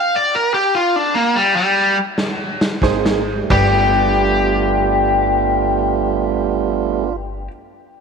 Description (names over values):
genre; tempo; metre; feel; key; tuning
electric blues shuffle; 86-104 BPM; 4/4; swing 68% on 8ths; G mixolydian; A4 = 440 Hz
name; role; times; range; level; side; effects
cranked stack guitar; melody; 0.0-7.5 s; G3 to F5; -16 LUFS; left 3 dB; overdrive, tape echo
raw garage drum kit; drums; 2.2-3.7 s; crash cymbal, kick drum, snare drum; -20 LUFS; equal; none
bright upright piano; second line; 2.8-7.5 s; Ab4 to D5; -25 LUFS; right 7 dB; tape echo
tonewheel organ; accompaniment; 2.8-7.2 s; G3 to Ab4; -19 LUFS; right 12 dB; overdrive, stopped rotary speaker
upright bass; bass; 2.8-7.5 s; G1 to Ab1; -22 LUFS; left 1 dB; none
room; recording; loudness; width
light reverb, small room ambience; 1960s-style stereo; -14 LUFS; side -5 dB against mid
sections
0.0-3.5 A section; 3.5-6.3 B section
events
slowing down 0.0-3.5; stop 0.0-2.8; drum fill 2.2-3.5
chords
0.0 N.C.; 2.8 Abadd9; 3.5 G9